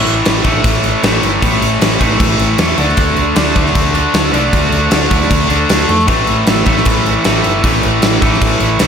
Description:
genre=hard rock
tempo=154 BPM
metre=4/4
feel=straight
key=unclear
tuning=A4 = 439 Hz
part: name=cranked stack guitar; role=riff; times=0.0-8.9 s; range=A2 to D4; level=-13 LUFS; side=equal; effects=overdrive, spring reverb
part: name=hollow-body short-scale fingered electric bass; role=bass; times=0.1-8.9 s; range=G1 to F2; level=-18 LUFS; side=equal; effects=none
part: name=gated 80s drum kit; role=drums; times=0.1-8.9 s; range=crash cymbal, kick drum, snare drum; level=-14 LUFS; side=equal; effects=none
room=moderate lush hall reverb, RT60 1.7 s, studio ambience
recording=big arena sound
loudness=-10 LUFS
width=side -7 dB against mid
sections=0.0-8.9 A section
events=none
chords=0.0 A5; 2.8 D5; 6.1 A5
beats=0.25 0.64 1.03 | 1.42 1.81 2.20 2.59 | 2.98 3.37 3.75 4.14 | 4.53 4.92 5.31 5.70 | 6.08 6.47 6.86 7.25 | 7.64 8.03 8.41 8.80

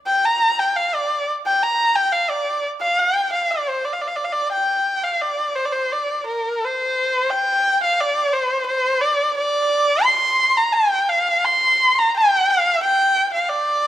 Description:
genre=chinese traditional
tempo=87 BPM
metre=2/4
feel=rubato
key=G yu mode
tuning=A4 = 440 Hz
part: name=warm erhu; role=solo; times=0.1-13.9 s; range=Bb4 to C6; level=-16 LUFS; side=equal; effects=none
room=moderate recital hall reverb, RT60 1.6 s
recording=none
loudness=-17 LUFS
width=side -12 dB against mid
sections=0.0-5.2 A section; 5.2-13.9 B section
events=none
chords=none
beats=0.42 | 1.12 1.80 | 2.49 3.17 | 3.85 4.54 | 5.24 5.94 | 6.64 7.33 | 8.01 8.68 | 9.37 10.05 | 10.75 11.45 | 12.15 12.83 | 13.51

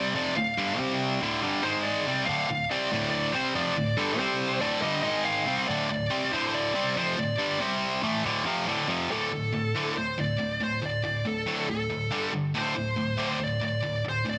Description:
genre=rock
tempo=141 BPM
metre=4/4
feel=straight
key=D minor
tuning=A4 = 440 Hz
part: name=high-gain lead guitar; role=melody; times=0.0-14.4 s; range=A4 to F5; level=-32 LUFS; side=equal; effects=distortion, tape echo
part: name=distorted electric guitar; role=riff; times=0.0-14.4 s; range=D2 to C4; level=-29 LUFS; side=equal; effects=overdrive
room=light reverb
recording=dense, heavily limited modern master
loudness=-28 LUFS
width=mono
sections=0.0-9.1 A section; 9.1-14.4 B section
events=none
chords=0.0 Dm; 0.8 C5; 1.2 D5; 1.6 G#5; 2.1 Dm; 4.2 C5; 4.6 D5; 5.0 G#5; 5.5 Dm; 7.6 C5; 8.0 Dm; 9.1 D5; 12.1 G5; 12.5 D5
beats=0.14 | 0.57 1.00 1.42 1.85 | 2.28 2.70 3.13 3.56 | 3.98 4.41 4.83 5.26 | 5.69 6.11 6.54 6.97 | 7.39 7.82 8.25 8.67 | 9.10 9.53 9.96 10.39 | 10.82 11.25 11.68 12.11 | 12.54 12.97 13.40 13.83 | 14.26

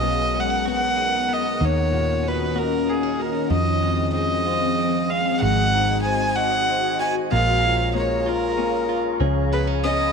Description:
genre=pop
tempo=63 BPM (dotted quarters)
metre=6/8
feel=straight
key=unclear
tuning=A4 = 440 Hz
part: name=warm violin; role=melody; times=0.0-10.1 s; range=Ab4 to Ab5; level=-23 LUFS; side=right 2 dB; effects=none
part: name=warm concert grand piano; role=accompaniment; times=0.0-10.1 s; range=Bb2 to Eb5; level=-27 LUFS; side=left 10 dB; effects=none
part: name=glassy FM pad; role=sustained chords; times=0.0-10.1 s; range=Eb3 to Cb6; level=-26 LUFS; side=left 2 dB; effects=ensemble chorus, built-in reverb
part: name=direct-recorded clean electric guitar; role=arpeggios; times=0.0-10.1 s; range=Eb3 to Ab4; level=-32 LUFS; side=right 12 dB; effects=none
part: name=vintage muted fingered electric bass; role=bass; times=0.0-10.1 s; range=Ab1 to F2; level=-25 LUFS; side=right 2 dB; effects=none
room=moderate echo chamber reverb, RT60 1.6 s, small room ambience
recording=1960s-style stereo with parts hard left and right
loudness=-19 LUFS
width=side -5 dB against mid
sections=0.0-5.4 A section; 5.4-10.1 B section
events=none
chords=0.0 Abm7/Cb; 1.6 Ebm7; 3.5 Fm7; 5.4 Ab7; 7.3 Bbm7; 9.2 Db7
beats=0.67 | 1.61 2.56 | 3.50 4.46 | 5.41 6.37 | 7.32 8.26 | 9.20

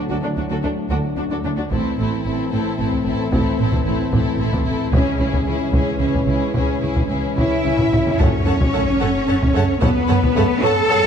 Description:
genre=cinematic, epic orchestral film score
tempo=74 BPM (dotted quarters)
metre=6/8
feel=straight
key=unclear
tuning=A4 = 440 Hz
part: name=warm symphonic violin section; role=melody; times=0.0-11.1 s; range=D4 to A5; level=-28 LUFS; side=left 4 dB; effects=none
part: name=warm symphonic violin section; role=second line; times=0.0-11.0 s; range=A3 to A5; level=-29 LUFS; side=left 4 dB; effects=none
part: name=rich symphonic viola section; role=accompaniment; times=0.0-11.0 s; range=C4 to C#5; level=-26 LUFS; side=left 1 dB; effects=none
part: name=mellow French horn section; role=sustained chords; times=0.0-11.1 s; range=G#3 to A4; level=-25 LUFS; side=left 4 dB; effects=none
part: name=warm trombone section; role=sustained chords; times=0.0-10.4 s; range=A2 to A3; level=-28 LUFS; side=right 4 dB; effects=none
part: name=rich symphonic cello section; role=bass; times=0.0-11.1 s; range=D2 to A4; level=-24 LUFS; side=right 3 dB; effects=none
part: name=warm symphonic double bass section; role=bass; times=0.1-11.0 s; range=A1 to F#2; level=-24 LUFS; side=right 3 dB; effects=none
part: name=taiko ensemble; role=drums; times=1.7-11.1 s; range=none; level=-22 LUFS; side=equal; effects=none
part: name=timpani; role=percussion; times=8.2-9.0 s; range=F#2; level=-28 LUFS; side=left 1 dB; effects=none
part: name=sub drop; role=sound effects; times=8.4-9.8 s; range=none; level=-28 LUFS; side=equal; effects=none
room=wet concert hall reverb, RT60 2.0 s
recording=dark, warm production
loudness=-16 LUFS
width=side -8 dB against mid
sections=0.0-8.2 A section; 8.2-11.1 B section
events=build-up 0.0-8.2; drum fill 7.8-8.2; impact 8.2-9.8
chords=0.0 D; 1.7 Am; 4.9 C#m; 8.2 F#m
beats=| 0.10 0.91 | 1.71 2.51 | 3.32 4.12 | 4.92 5.73 | 6.55 7.38 | 8.20 9.01 | 9.82 10.63

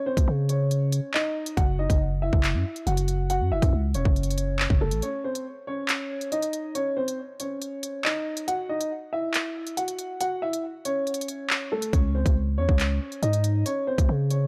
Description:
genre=hip hop, drill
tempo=139 BPM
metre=4/4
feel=half-time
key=C# harmonic minor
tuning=A4 = 440 Hz
part: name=dark grand piano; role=melody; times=0.0-14.5 s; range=A3 to F#5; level=-31 LUFS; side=equal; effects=low-pass filter, tape echo
part: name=growling 808-style bass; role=bass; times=0.2-5.0, 11.9-14.5 s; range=E1 to C#3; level=-27 LUFS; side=equal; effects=none
part: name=drill drum kit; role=drums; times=0.2-14.4 s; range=handclaps, hi-hat, kick drum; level=-28 LUFS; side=equal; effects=none
room=digital ambience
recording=dark, warm production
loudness=-26 LUFS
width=mono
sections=0.0-14.5 A section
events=break 5.0-11.9; kick muted 10.2-11.9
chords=0.0 C#sus2; 1.6 F#7(no3); 5.0 C#sus2; 8.5 F#7(no3); 11.9 C#sus2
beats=0.28 0.71 1.14 | 1.57 2.00 2.44 2.87 | 3.30 3.73 4.16 4.59 | 5.03 5.46 5.89 6.32 | 6.75 7.18 7.62 8.05 | 8.48 8.91 9.34 9.77 | 10.21 10.64 11.07 11.50 | 11.93 12.36 12.79 13.23 | 13.66 14.09

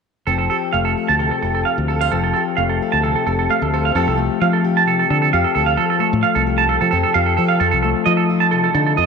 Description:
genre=highlife guitar band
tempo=131 BPM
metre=4/4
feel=straight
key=F major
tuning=A4 = 440 Hz
part: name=fingerpicked plugged-in steel-string acoustic guitar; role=accompaniment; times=0.3-9.1 s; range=C3 to C5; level=-21 LUFS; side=left 13 dB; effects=none
part: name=clean electric guitar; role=arpeggios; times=0.3-9.0 s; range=A4 to A5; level=-18 LUFS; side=right 8 dB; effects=spring reverb, tape echo
part: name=fingered electric bass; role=bass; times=0.3-9.1 s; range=F1 to F3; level=-20 LUFS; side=left 1 dB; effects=none
room=wet echo chamber reverb, RT60 1.9 s, small room ambience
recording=1960s-style stereo with parts hard left and right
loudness=-15 LUFS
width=side -5 dB against mid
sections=0.3-4.0 A section; 4.0-9.1 B section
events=none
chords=0.3 Fadd9; 7.6 F7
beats=| 0.26 0.73 1.19 1.65 | 2.11 2.57 3.03 3.49 | 3.95 4.41 4.87 5.33 | 5.78 6.24 6.69 7.15 | 7.61 8.06 8.52 8.97

